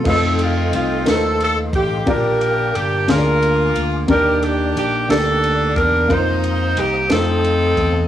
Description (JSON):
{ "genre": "slow gospel", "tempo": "60 BPM (dotted quarters)", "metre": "6/8", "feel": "straight", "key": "unclear", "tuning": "A4 = 440 Hz", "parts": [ { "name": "bright saxophone section", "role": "melody", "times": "0.0-8.1 s", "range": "C4 to C5", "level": "-18 LUFS", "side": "equal", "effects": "cassette tape" }, { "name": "warm upright piano", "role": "accompaniment", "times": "0.0-8.1 s", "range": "Bb2 to D5", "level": "-22 LUFS", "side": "left 2 dB", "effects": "none" }, { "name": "percussive tonewheel organ", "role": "sustained chords", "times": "0.0-8.1 s", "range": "Bb3 to Eb6", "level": "-29 LUFS", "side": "right 2 dB", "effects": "slow rotary speaker, chorus vibrato" }, { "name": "fingered electric bass", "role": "bass", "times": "0.1-8.1 s", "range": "G1 to F2", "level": "-22 LUFS", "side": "equal", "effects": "none" }, { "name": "crisp fusion drum kit", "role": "drums", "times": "0.1-7.9 s", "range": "crash cymbal, kick drum, ride cymbal, snare drum", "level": "-25 LUFS", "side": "equal", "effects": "cassette tape" } ], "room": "light reverb", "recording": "home recording on cassette, small room ambience", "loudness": "-15 LUFS", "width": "side -11 dB against mid", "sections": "0.1-8.1 A section", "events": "none", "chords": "0.1 F7; 2.1 Bb6; 3.1 Bb7/D; 4.1 Ebmaj7; 6.1 F7sus4; 7.1 F7" }